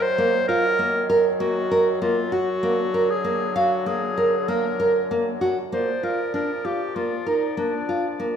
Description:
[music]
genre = contemporary instrumental, chamber music in an uneven meter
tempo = 97 BPM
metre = 5/4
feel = straight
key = unclear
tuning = A4 = 440 Hz
[part]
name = clear clarinet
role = melody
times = 0.0-8.4 s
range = D4 to C5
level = -25 LUFS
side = left 1 dB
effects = none
[part]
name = clear woodwind section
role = sustained chords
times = 0.0-8.4 s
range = Gb2 to D5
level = -30 LUFS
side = left 2 dB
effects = none
[part]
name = nylon-string guitar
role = arpeggios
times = 0.0-8.4 s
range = Bb3 to F5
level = -22 LUFS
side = right 1 dB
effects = none
[sound]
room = light reverb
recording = minimal, uncompressed stereo recording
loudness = -20 LUFS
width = side -8 dB against mid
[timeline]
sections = 0.0-5.7 A section; 5.7-8.4 B section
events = none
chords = 0.0 Ebm; 5.7 Bb

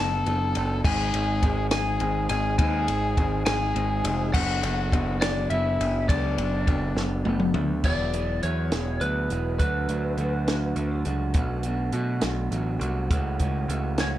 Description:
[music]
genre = indie rock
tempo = 68 BPM (dotted quarters)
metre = 6/8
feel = straight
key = unclear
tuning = A4 = 438 Hz
[part]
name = lightly driven lead guitar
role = melody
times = 0.0-11.0, 14.0-14.1 s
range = B4 to A5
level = -29 LUFS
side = left 2 dB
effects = none
[part]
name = bright trumpet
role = second line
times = 0.0-7.5 s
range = D4 to A4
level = -36 LUFS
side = left 1 dB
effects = analog delay
[part]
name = electric guitar through a small old amp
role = riff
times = 0.0-14.2 s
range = B2 to A4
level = -29 LUFS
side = right 1 dB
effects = none
[part]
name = growling picked electric bass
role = bass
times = 0.0-14.2 s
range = E1 to B2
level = -28 LUFS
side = equal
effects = overdrive
[part]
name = compact cocktail drum kit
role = drums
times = 0.3-14.1 s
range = crash cymbal, hi-hat, kick drum, ride cymbal, snare drum, toms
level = -27 LUFS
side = equal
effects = none
[sound]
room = light reverb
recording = none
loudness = -23 LUFS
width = side -13 dB against mid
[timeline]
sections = 0.0-7.8 A section; 7.8-14.2 B section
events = drum fill 7.0-7.8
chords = 0.0 Bm7/F#; 0.8 G#; 4.3 Bm7/F#; 7.8 Eadd9; 9.6 D; 11.4 Bm7; 13.1 A6/C#

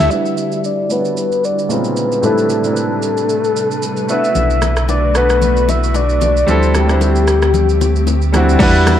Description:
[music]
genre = amapiano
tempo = 113 BPM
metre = 4/4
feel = swing 55% on 16ths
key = E minor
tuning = A4 = 440 Hz
[part]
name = soft octave-layered synth lead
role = melody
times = 0.0-8.3 s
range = G4 to E5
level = -17 LUFS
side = left 2 dB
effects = chorus, low-pass filter, digital delay
[part]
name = clear baby grand piano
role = accompaniment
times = 0.0-9.0 s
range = A2 to D5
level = -18 LUFS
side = right 1 dB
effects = low-pass filter
[part]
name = glassy FM pad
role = sustained chords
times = 0.0-9.0 s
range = C3 to B4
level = -23 LUFS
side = left 1 dB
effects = ensemble chorus, built-in reverb, low-pass filter
[part]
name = woody log drum bass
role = bass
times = 0.0-0.1, 8.6-9.0 s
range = E2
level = -14 LUFS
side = equal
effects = none
[part]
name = deep house drum kit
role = drums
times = 0.0-9.0 s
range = crash cymbal, hi-hat, kick drum, rim click, shaker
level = -23 LUFS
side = right 1 dB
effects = vintage 12-bit sampler grit
[part]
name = sub bass with octave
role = bass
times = 4.4-8.6 s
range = B1 to D2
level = -15 LUFS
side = equal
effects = none
[part]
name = congas and bongos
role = percussion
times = 4.4-9.0 s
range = none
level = -24 LUFS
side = left 7 dB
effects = none
[sound]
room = light reverb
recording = dark, warm production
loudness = -12 LUFS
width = side -10 dB against mid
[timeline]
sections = 0.1-8.6 A section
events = filter sweep 0.1-8.6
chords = 0.1 Em9; 1.7 A#m11; 2.2 Am11; 4.1 Bm7; 6.5 D7sus4

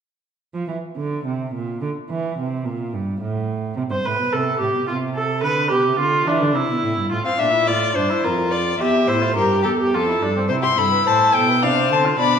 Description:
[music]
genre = classical, baroque-style fugue for string quartet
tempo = 107 BPM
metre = 3/4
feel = straight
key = F major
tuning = A4 = 440 Hz
[part]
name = dark cello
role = bass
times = 0.5-12.4 s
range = E2 to F3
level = -23 LUFS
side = right 3 dB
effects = none
[part]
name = rich viola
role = accompaniment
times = 3.9-12.4 s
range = C4 to C5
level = -20 LUFS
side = right 2 dB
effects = none
[part]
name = rich violin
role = second line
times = 7.3-12.4 s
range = G4 to F5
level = -21 LUFS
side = left 4 dB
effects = none
[part]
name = warm violin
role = melody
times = 10.6-12.4 s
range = F5 to C6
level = -17 LUFS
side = left 6 dB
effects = none
[sound]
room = wet recital hall reverb, RT60 1.5 s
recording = heard from further back in the room, nothing above 10.6 kHz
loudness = -18 LUFS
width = side -7 dB against mid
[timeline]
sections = 0.4-12.4 A section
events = none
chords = 0.4 F5; 1.5 Bb; 2.1 Edim; 3.2 N.C.; 3.8 C5; 4.9 F/C (rootless); 5.4 Bdim; 6.6 C; 7.1 F/A; 8.2 Bb/F; 8.8 Edim; 9.9 F; 10.5 C; 11.6 Dm7/C

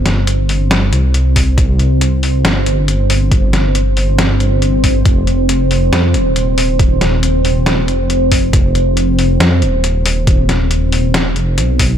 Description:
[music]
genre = deep dubstep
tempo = 138 BPM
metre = 4/4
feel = swing 55% on 16ths, half-time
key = unclear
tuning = A4 = 440 Hz
[part]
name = deep dark ambient pad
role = sustained chords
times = 0.0-12.0 s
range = C4 to C5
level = -18 LUFS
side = equal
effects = chorus, built-in reverb
[part]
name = dark detuned saw bass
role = bass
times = 0.0-12.0 s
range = Eb1 to F2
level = -14 LUFS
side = equal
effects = none
[part]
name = trip hop sampler-style drum kit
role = drums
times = 0.1-11.9 s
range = hi-hat, snare drum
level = -18 LUFS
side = left 1 dB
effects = none
[part]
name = electronic kick drum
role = drums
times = 1.4-11.9 s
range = none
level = -13 LUFS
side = equal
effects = none
[sound]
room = light reverb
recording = none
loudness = -11 LUFS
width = side -9 dB against mid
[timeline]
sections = 0.0-12.0 A section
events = none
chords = 0.0 C5; 5.1 F5

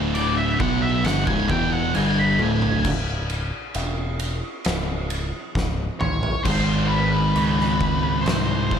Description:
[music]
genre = stoner and doom metal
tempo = 67 BPM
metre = 4/4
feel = straight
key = unclear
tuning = A4 = 439 Hz
[part]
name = fuzz guitar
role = riff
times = 0.0-8.8 s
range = C#2 to B3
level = -28 LUFS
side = equal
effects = distortion
[part]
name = thick fuzz guitar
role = riff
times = 0.0-8.8 s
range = C#2 to B3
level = -26 LUFS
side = left 9 dB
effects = distortion
[part]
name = thick fuzz guitar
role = riff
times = 0.0-8.8 s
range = C#2 to B3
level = -25 LUFS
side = right 8 dB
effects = distortion
[part]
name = growling picked electric bass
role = bass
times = 0.0-8.8 s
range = C#1 to C#2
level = -27 LUFS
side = equal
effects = overdrive
[part]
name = octave-fuzz lead guitar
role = melody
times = 0.1-8.8 s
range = B4 to B5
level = -25 LUFS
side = left 2 dB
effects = distortion, tape echo
[part]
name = oversized low-tuned drum kit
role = drums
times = 0.1-8.8 s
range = crash cymbal, kick drum, ride cymbal, snare drum, toms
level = -26 LUFS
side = equal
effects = none
[sound]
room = light reverb, studio reverb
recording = none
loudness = -20 LUFS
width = side -8 dB against mid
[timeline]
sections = 0.0-2.9 A section; 2.9-6.5 B section; 6.5-8.8 C section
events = lead electric guitar solo 0.0-2.9; drum fill 2.4-2.9, 5.6-6.5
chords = 0.0 D5; 0.6 C#m; 6.5 G#

